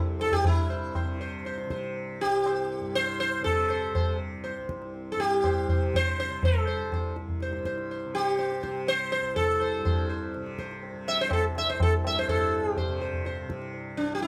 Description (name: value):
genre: indian classical, Hindustani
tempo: 122 BPM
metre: 3/4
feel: straight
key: unclear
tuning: A4 = 440 Hz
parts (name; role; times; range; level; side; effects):
- tanpura; drone; 0.0-14.3 s; C2 to C3; -39 LUFS; equal; none
- sitar; melody; 0.2-14.3 s; D4 to E5; -30 LUFS; equal; none
- tabla; percussion; 0.2-14.3 s; none; -32 LUFS; equal; none
room: moderate studio reverb, RT60 0.6 s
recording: none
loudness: -28 LUFS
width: mono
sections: 0.4-12.3 A section; 12.3-14.3 B section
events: speeding up 0.0-14.3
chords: none